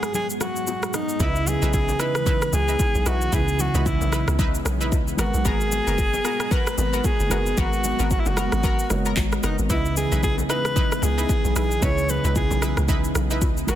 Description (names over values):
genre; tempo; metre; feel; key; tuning
amapiano; 113 BPM; 4/4; swing 58% on 16ths; C# minor; A4 = 440 Hz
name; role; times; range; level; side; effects
breathy alto saxophone; melody; 0.0-13.8 s; D#4 to C#5; -26 LUFS; equal; tape echo
dark baby grand piano; accompaniment; 0.0-13.8 s; C#3 to D#5; -30 LUFS; right 2 dB; none
string machine, cellos; sustained chords; 0.0-13.8 s; G#2 to A#5; -30 LUFS; equal; ensemble chorus
deep house drum kit; drums; 0.0-13.8 s; handclaps, kick drum, rim click, shaker; -25 LUFS; equal; soft clipping on snare
congas and bongos; percussion; 0.1-13.6 s; none; -34 LUFS; left 7 dB; none
analog pluck; stabs; 1.2-13.8 s; B3 to B4; -31 LUFS; left 1 dB; chorus, tape echo
hollow log drum bass; bass; 1.2-13.8 s; F#1 to C#2; -24 LUFS; equal; none
room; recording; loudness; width
light reverb, studio ambience; dense, heavily limited modern master; -20 LUFS; side -12 dB against mid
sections
0.0-1.2 A section; 1.2-13.8 B section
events
kick muted 0.1-1.2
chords
0.0 G#m9; 1.2 C#m9; 5.2 G#m9; 9.7 C#m9